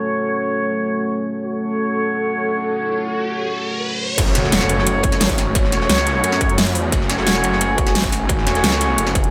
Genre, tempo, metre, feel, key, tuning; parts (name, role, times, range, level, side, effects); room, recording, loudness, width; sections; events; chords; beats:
dark technical drum and bass; 175 BPM; 4/4; straight; F# minor; A4 = 440 Hz
dark analog pad; sustained chords; 0.0-9.3 s; A3 to G#5; -25 LUFS; equal; chorus, sidechain pumping
dark brass ensemble; stabs; 0.0-9.1 s; F#4 to C#5; -25 LUFS; equal; low-pass filter, delay
riser and impact; sound effects; 2.6-5.6 s; -29 LUFS; equal
detuned saw bass; bass; 4.2-9.3 s; E1 to F#2; -24 LUFS; equal; chorus, overdrive, sidechain pumping
crunchy breakbeat drum kit; drums; 4.2-9.2 s; ride cymbal, snare drum; -32 LUFS; equal; high-pass filter on cymbals, studio reverb, high-pass filter on snare, high-pass filter on room
dubstep drum kit; drums; 4.2-9.3 s; crash cymbal, hi-hat, snare drum; -22 LUFS; equal; low-pass filter on hats, studio reverb, low-pass filter on cymbals, low-pass filter on snare
electronic kick drum; drums; 4.2-9.2 s; -23 LUFS; equal; distortion, studio reverb
moderate lush hall reverb, RT60 2.0 s; -19 LUFS; mono
0.0-4.2 A section; 4.2-9.3 B section
riser 2.6-4.2; drop 4.2-9.3; impact 4.2-5.6
0.0 F#m
| 0.07 0.41 0.75 1.09 | 1.44 1.78 2.12 2.47 | 2.81 3.15 3.50 3.84 | 4.18 4.52 4.87 5.21 | 5.55 5.89 6.24 6.58 | 6.92 7.27 7.61 7.95 | 8.29 8.64 8.98